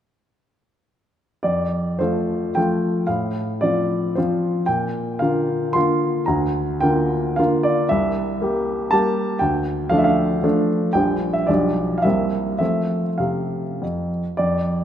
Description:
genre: classical, romantic triple-time dance for piano with dotted rhythms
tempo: 94-126 BPM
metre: 3/4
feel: rubato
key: F major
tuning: A4 = 440 Hz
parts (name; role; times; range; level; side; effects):
- warm baby grand piano; solo; 1.4-14.8 s; Bb1 to C6; -18 LUFS; equal; none
room: moderate concert hall reverb, RT60 2.4 s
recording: minimal, uncompressed stereo recording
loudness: -18 LUFS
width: side -10 dB against mid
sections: 1.4-14.4 A section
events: none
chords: 1.4 F; 3.1 F/A; 4.7 Bb; 6.3 Bb/D; 7.9 C7; 9.4 Dm; 10.9 Gm7/Bb; 11.5 G7/B; 12.0 C7; 12.6 F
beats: | 1.45 2.01 2.57 | 3.10 3.63 4.17 | 4.69 5.21 5.76 | 6.28 6.83 7.38 | 7.91 8.41 8.93 | 9.42 9.92 10.44 | 10.95 11.48 12.05 | 12.61 13.20 13.82 | 14.39

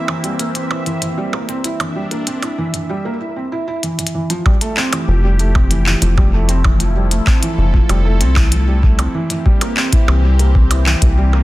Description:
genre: IDM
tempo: 96 BPM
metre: 4/4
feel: straight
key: unclear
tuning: A4 = 440 Hz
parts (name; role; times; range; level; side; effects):
- phased analog pad; sustained chords; 0.0-11.4 s; E3 to A4; -25 LUFS; left 1 dB; phaser, chorus
- felt-muted upright piano; arpeggios; 0.0-11.4 s; E3 to E4; -21 LUFS; right 1 dB; tape echo
- bubbling stepped-filter texture; texture; 0.0-2.9 s; E5; -32 LUFS; right 3 dB; chorus, built-in reverb
- glitchy drum kit; drums; 0.1-11.4 s; handclaps, hi-hat, percussion blips; -21 LUFS; right 1 dB; overdrive, studio reverb
- electronic kick drum; drums; 4.5-11.1 s; none; -14 LUFS; equal; studio reverb
- deep acid bass; bass; 5.1-11.4 s; F1 to C2; -14 LUFS; equal; tube saturation
room: digital ambience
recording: dense, heavily limited modern master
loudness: -13 LUFS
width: side -17 dB against mid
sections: 0.0-4.1 A section; 4.1-11.4 B section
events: drum fill 3.8-4.1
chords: 0.0 C7; 4.1 Fmaj9; 9.1 C7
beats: 0.40 1.02 | 1.65 2.27 2.90 3.52 | 4.14 4.77 5.39 6.02 | 6.64 7.27 7.89 8.52 | 9.14 9.77 10.39 11.02

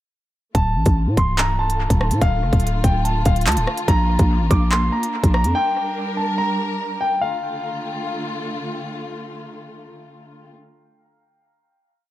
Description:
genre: hip hop, drill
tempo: 144 BPM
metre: 4/4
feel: half-time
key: D minor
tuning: A4 = 441 Hz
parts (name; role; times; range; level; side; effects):
- warm concert grand piano; melody; 0.5-8.4 s; F5 to D6; -23 LUFS; equal; low-pass filter, dub echo
- dark studio string section; sustained chords; 0.5-10.5 s; D3 to Bb4; -28 LUFS; left 1 dB; none
- growling 808-style bass; bass; 0.5-5.5 s; C1 to A2; -19 LUFS; equal; none
- drill drum kit; drums; 0.5-5.5 s; handclaps, hi-hat, kick drum, rim click; -20 LUFS; equal; dub echo
room: light reverb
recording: echo-heavy mix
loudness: -17 LUFS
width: side -14 dB against mid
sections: 0.5-7.2 hook; 7.2-10.5 final chord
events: none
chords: 0.5 Dm; 3.9 Bb; 5.5 Gm; 7.2 Dm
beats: | 0.55 0.96 1.38 1.80 | 2.21 2.63 3.05 3.46 | 3.88 4.30 4.71 5.13 | 5.55 5.96 6.38 6.80 | 7.21 7.63 8.05 8.46 | 8.88 9.30 9.71 10.13

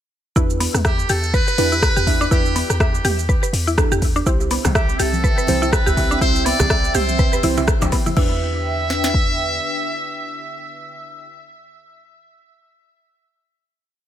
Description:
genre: afro house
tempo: 123 BPM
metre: 4/4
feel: swing 58% on 16ths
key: E minor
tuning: A4 = 440 Hz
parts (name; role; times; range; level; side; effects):
- mallet-like synth pluck; arpeggios; 0.4-8.4 s; B3 to E5; -24 LUFS; equal; chorus, sidechain pumping, ping-pong delay
- deep mellow chord stab; stabs; 0.4-11.3 s; C4 to E5; -26 LUFS; right 2 dB; chorus, cassette tape, sidechain pumping, ping-pong delay
- warm 808-style bass; bass; 0.4-9.6 s; C2 to E2; -23 LUFS; equal; sidechain pumping
- afro-pop drum kit; drums; 0.4-9.3 s; kick drum, snare drum; -19 LUFS; equal; none
- deep house drum kit; drums; 0.4-8.3 s; crash cymbal, hi-hat, rim click, shaker, toms; -24 LUFS; equal; overdrive
- trumpet with metal mute; melody; 0.9-11.3 s; G4 to E5; -24 LUFS; right 1 dB; ping-pong delay
- dark analog pad; sustained chords; 4.3-11.3 s; C4 to E6; -27 LUFS; right 2 dB; chorus, sidechain pumping
- djembe; percussion; 4.4-8.0 s; none; -28 LUFS; right 2 dB; none
- congas; percussion; 4.7-8.1 s; none; -27 LUFS; left 3 dB; none
room: digital ambience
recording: none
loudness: -16 LUFS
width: side -10 dB against mid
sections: 0.4-8.2 drop; 8.2-12.1 final chord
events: drop 0.4-8.2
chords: 0.4 Em7; 4.3 C; 8.2 Em7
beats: | 0.36 0.85 1.34 1.82 | 2.31 2.80 3.29 3.78 | 4.26 4.75 5.24 5.73 | 6.21 6.70 7.19 7.68 | 8.17 8.65 9.14 9.63 | 10.12 10.61 11.09

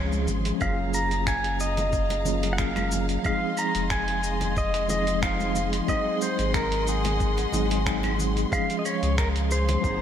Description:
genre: sunset chillout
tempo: 91 BPM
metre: 4/4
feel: swing 53% on 16ths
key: Gb lydian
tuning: A4 = 440 Hz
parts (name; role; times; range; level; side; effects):
- pedal steel guitar; melody; 0.0-10.0 s; Ab4 to Bb5; -28 LUFS; equal; digital delay
- mellow tine electric piano; accompaniment; 0.0-10.0 s; F3 to Ab4; -29 LUFS; equal; medium stereo tremolo, auto-pan
- rich studio string section; sustained chords; 0.0-10.0 s; Ab4 to C6; -34 LUFS; left 1 dB; none
- warm sub bass; bass; 0.0-10.0 s; F1 to Db2; -28 LUFS; equal; none
- dusty soul sampler-style drum kit; drums; 0.1-10.0 s; cabasa, claves, finger snaps, hi-hat; -32 LUFS; right 1 dB; gated reverb
- congas; percussion; 0.1-9.8 s; none; -37 LUFS; left 2 dB; none
- electronic kick drum; drums; 0.6-10.0 s; none; -30 LUFS; equal; none
room: moderate lush hall reverb, RT60 2.2 s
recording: bright 1980s-style digital production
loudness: -23 LUFS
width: side -9 dB against mid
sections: 0.0-10.0 A section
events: none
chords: 0.0 Dbmaj7; 0.6 Gbmaj9; 3.2 Fm7; 5.9 Ab7; 8.5 Dbmaj7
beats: | 0.61 1.27 1.93 2.59 | 3.25 3.90 4.56 5.22 | 5.88 6.54 7.20 7.86 | 8.52 9.18 9.84

